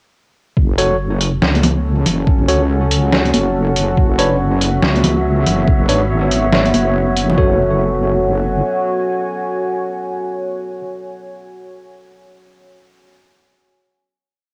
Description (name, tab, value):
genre	deep dubstep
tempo	141 BPM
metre	4/4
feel	swing 61% on 16ths, half-time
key	F# minor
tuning	A4 = 441 Hz
part	deep dark ambient pad	sustained chords	1.7-10.8 s	B3 to G#5	-22 LUFS	equal	chorus, built-in reverb, cassette tape
part	wobble bass	bass	0.6-8.6 s	F#1 to C#2	-20 LUFS	equal	chorus
part	electronic kick drum	drums	0.6-7.5 s	none	-17 LUFS	equal	none
part	tine electric piano	stabs	0.8-10.8 s	D4 to C#5	-24 LUFS	equal	cassette tape, dub echo
part	trip hop sampler-style drum kit	drums	0.8-7.3 s	hi-hat, snare drum	-20 LUFS	equal	none
part	congas	percussion	1.6-7.4 s	none	-22 LUFS	equal	dub echo
part	wind-like tuned noise texture	texture	4.6-7.4 s	E5	-28 LUFS	equal	built-in reverb, cassette tape
room	moderate spring reverb, RT60 1.6 s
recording	home recording on cassette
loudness	-16 LUFS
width	mono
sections	0.6-7.4 drop; 7.4-10.8 final chord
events	drop 0.6-7.4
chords	0.6 F#m; 4.0 Bsus2/F#; 7.4 F#m